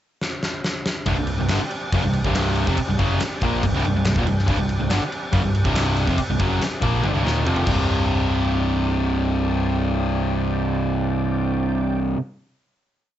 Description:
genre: hard rock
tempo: 142 BPM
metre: 4/4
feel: straight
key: unclear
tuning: A4 = 440 Hz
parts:
  - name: huge arena drum kit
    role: drums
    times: 0.2-7.8 s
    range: crash cymbal, kick drum, snare drum, toms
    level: -25 LUFS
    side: equal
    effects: cassette tape
  - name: overdriven tonewheel organ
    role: sustained chords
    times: 1.1-12.0 s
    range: C4 to D5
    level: -33 LUFS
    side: equal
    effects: slow rotary speaker, chorus vibrato, cassette tape
  - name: biting overdriven guitar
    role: riff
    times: 1.1-12.2 s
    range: C2 to Bb3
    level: -24 LUFS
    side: right 6 dB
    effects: cassette tape
  - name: distorted electric guitar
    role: riff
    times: 1.1-12.2 s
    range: C2 to Bb3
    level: -25 LUFS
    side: left 8 dB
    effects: overdrive, cassette tape
  - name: picked electric bass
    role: bass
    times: 1.1-12.1 s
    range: C1 to Bb1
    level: -24 LUFS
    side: equal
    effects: none
room: light reverb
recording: home recording on cassette, nothing above 7.9 kHz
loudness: -19 LUFS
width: side -11 dB against mid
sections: 0.0-1.1 pickup bar; 1.1-7.9 riff; 7.9-11.2 final hit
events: drum fill 0.2-1.1, 7.0-7.9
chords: 0.0 N.C.; 1.1 Cm; 7.7 C5

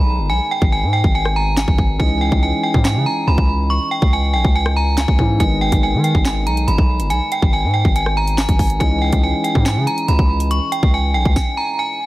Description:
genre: hip hop, drill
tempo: 141 BPM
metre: 4/4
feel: half-time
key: unclear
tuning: A4 = 440 Hz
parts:
  - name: metallic FM bell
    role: melody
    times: 0.0-12.1 s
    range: G5 to C#6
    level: -20 LUFS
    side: right 1 dB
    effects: chorus, ping-pong delay
  - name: dark concert grand piano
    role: accompaniment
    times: 0.0-12.0 s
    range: D#3 to E4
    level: -25 LUFS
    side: left 1 dB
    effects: none
  - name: distorted 808-style bass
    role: bass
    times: 0.0-11.4 s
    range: G1 to D#3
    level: -18 LUFS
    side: equal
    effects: distortion
  - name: drill drum kit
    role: drums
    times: 0.6-11.5 s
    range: handclaps, hi-hat, kick drum, rim click, snare drum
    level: -17 LUFS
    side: equal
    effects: none
room: digital ambience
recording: dense, heavily limited modern master, vinyl crackle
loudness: -14 LUFS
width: side -18 dB against mid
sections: 0.0-12.1 A section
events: break 0.0-5.4; stop 11.4-12.1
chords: 0.0 G#m; 2.0 C#madd9; 5.4 G#m; 8.8 C#madd9

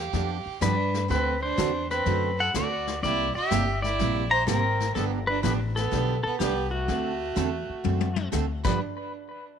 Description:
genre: country, western swing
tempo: 125 BPM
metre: 4/4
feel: swing 67% on 8ths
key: unclear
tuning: A4 = 440 Hz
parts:
  - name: pedal steel guitar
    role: melody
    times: 0.0-8.8 s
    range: F#4 to Bb5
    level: -28 LUFS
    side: left 2 dB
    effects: tape echo
  - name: clear fiddle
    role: second line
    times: 0.0-8.8 s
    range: A3 to C5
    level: -32 LUFS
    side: right 11 dB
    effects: tape echo
  - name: upright bass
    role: bass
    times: 0.0-8.8 s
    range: G1 to G2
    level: -29 LUFS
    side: left 2 dB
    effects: none
  - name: picked steel-string acoustic guitar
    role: accompaniment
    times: 0.1-8.8 s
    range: G2 to A4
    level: -31 LUFS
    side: right 11 dB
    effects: none
  - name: vintage brush drum kit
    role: drums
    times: 0.1-8.7 s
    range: brushed snare drum, crash cymbal, hi-hat, kick drum, snare drum, toms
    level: -32 LUFS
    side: left 8 dB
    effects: none
room: light reverb, small room reverb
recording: 1960s-style stereo with parts hard left and right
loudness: -24 LUFS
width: side -8 dB against mid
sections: 0.0-8.8 A section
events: drum fill 7.8-8.3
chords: 0.0 G7; 1.1 D7; 3.0 C7; 5.0 G7; 6.9 D7; 8.6 G7; 8.8 N.C.

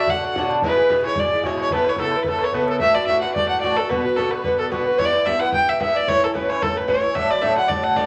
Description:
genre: celtic folk, Celtic reel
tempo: 221 BPM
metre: 4/4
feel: swing 53% on 8ths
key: D major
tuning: A4 = 442 Hz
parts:
  - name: warm fiddle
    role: melody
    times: 0.0-8.1 s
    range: A4 to G5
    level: -22 LUFS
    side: equal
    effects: none
  - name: baroque flute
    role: second line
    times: 0.0-8.1 s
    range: A4 to G5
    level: -30 LUFS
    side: equal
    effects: none
  - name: Irish bouzouki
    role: accompaniment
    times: 0.0-8.1 s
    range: G2 to A4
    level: -25 LUFS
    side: equal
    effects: none
  - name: bodhran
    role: percussion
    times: 0.1-8.0 s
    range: none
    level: -33 LUFS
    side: equal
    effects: none
room: wet studio reverb, RT60 0.6 s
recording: vinyl crackle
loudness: -20 LUFS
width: mono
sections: 0.0-2.8 A section; 2.8-8.1 B section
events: none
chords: 0.0 Bm; 0.6 E; 1.7 Aadd9; 2.8 Dadd9; 3.9 Bm; 5.0 Em; 6.1 A; 7.2 D

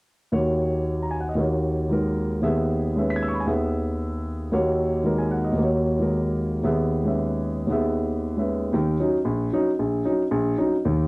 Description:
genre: jazz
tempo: 228 BPM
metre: 4/4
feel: swing 59% on 8ths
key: Eb phrygian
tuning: A4 = 440 Hz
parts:
  - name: warm concert grand piano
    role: solo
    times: 0.3-11.1 s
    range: Bb1 to B6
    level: -21 LUFS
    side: equal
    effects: none
room: wet studio reverb, RT60 0.5 s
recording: home recording on cassette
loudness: -21 LUFS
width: side -26 dB against mid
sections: 0.3-8.7 A section; 8.7-11.1 B section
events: none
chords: 0.3 Ebm7; 2.4 E/Eb; 4.5 Ebm7; 6.6 E/Eb; 8.7 Ebm7

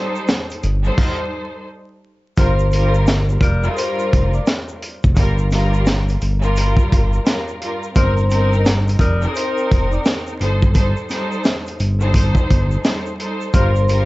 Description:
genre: hip hop, boom-bap hip-hop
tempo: 86 BPM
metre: 4/4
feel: swing 63% on 16ths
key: G minor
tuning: A4 = 440 Hz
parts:
  - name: warm studio string section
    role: accompaniment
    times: 0.0-14.1 s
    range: G2 to C5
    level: -24 LUFS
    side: equal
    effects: cassette tape, high-pass filter, low-pass filter
  - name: egg shaker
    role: percussion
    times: 0.2-14.1 s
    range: none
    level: -44 LUFS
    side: left 5 dB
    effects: none
  - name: crunchy breakbeat drum kit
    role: drums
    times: 0.3-14.1 s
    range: crash cymbal, hi-hat, kick drum, snare drum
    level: -18 LUFS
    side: equal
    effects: none
  - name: smooth gliding synth bass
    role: bass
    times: 0.6-14.1 s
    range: F1 to G1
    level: -17 LUFS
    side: equal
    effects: none
  - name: vibraphone with soft mallets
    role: melody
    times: 2.4-14.1 s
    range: Bb4 to D6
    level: -24 LUFS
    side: left 2 dB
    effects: high-pass filter, low-pass filter, tape echo
  - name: warm saxophone section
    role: stabs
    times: 2.4-13.7 s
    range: G3 to Bb4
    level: -28 LUFS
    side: left 2 dB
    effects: high-pass filter, low-pass filter, tape echo
room: little or no reverb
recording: vinyl crackle, nothing above 7.9 kHz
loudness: -15 LUFS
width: side -19 dB against mid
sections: 0.0-2.4 A section; 2.4-14.1 A section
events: stop 1.0-2.4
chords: 0.0 Am7b5/G; 2.4 Gm7; 8.0 Cm7; 10.4 Am7b5/G; 13.5 Gm7

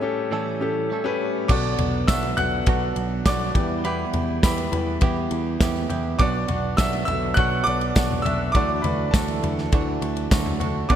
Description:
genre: piano-driven pop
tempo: 102 BPM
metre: 4/4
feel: straight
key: B minor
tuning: A4 = 439 Hz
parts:
  - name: warm grand piano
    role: accompaniment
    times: 0.0-11.0 s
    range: A2 to F#6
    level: -25 LUFS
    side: left 2 dB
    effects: none
  - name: direct-recorded clean electric guitar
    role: riff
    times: 0.0-11.0 s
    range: A2 to A4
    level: -28 LUFS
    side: right 6 dB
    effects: lush chorus
  - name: picked electric bass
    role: bass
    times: 1.5-11.0 s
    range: B1 to E2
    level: -28 LUFS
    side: equal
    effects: none
  - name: modern studio drum kit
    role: drums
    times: 1.5-11.0 s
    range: crash cymbal, kick drum, ride cymbal, snare drum, toms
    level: -23 LUFS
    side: equal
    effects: gated reverb
  - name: tambourine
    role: percussion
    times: 2.1-10.4 s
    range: none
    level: -38 LUFS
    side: left 6 dB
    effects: none
room: moderate lush hall reverb, RT60 1.9 s, studio ambience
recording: bright 1980s-style digital production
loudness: -20 LUFS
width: side -10 dB against mid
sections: 0.0-1.5 A section; 1.5-11.0 B section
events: break 0.0-1.5; grand piano solo 1.5-11.0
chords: 0.0 A7; 1.5 Bm; 3.5 Em; 6.2 Bm; 8.6 Dadd9

